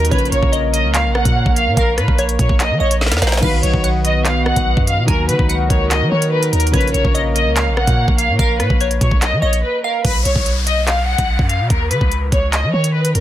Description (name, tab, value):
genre	hip hop, drill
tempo	145 BPM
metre	4/4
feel	half-time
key	Bb phrygian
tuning	A4 = 441 Hz
part	rich studio violin section	melody	0.0-13.2 s	Bb4 to Gb5	-19 LUFS	left 1 dB	low-pass filter, tape echo
part	felt-muted upright piano	accompaniment	0.0-10.1 s	Db3 to Gb4	-25 LUFS	left 2 dB	low-pass filter
part	warm analog pad	sustained chords	0.0-10.0 s	Eb3 to D#5	-25 LUFS	right 4 dB	chorus
part	long sustained 808-style bass	bass	0.0-13.2 s	Bb1 to Gb3	-18 LUFS	equal	none
part	drill drum kit	drums	0.0-13.2 s	crash cymbal, handclaps, hi-hat, kick drum, rim click, snare drum	-18 LUFS	equal	overdrive
part	downlifter	sound effects	0.0-0.1, 10.0-13.2 s	none	-27 LUFS	left 2 dB	none
part	glassy wavetable pluck	second line	0.1-10.0 s	Db5 to Ab5	-24 LUFS	equal	chorus, tape echo
room	digital ambience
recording	dense, heavily limited modern master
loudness	-13 LUFS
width	side -12 dB against mid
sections	0.0-10.0 A section; 10.0-13.2 B section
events	drum fill 3.0-3.4; break 9.6-10.0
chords	0.1 Bbm; 3.4 B; 5.1 Ebm; 6.7 Bbm; 10.0 B5; 11.7 N.C.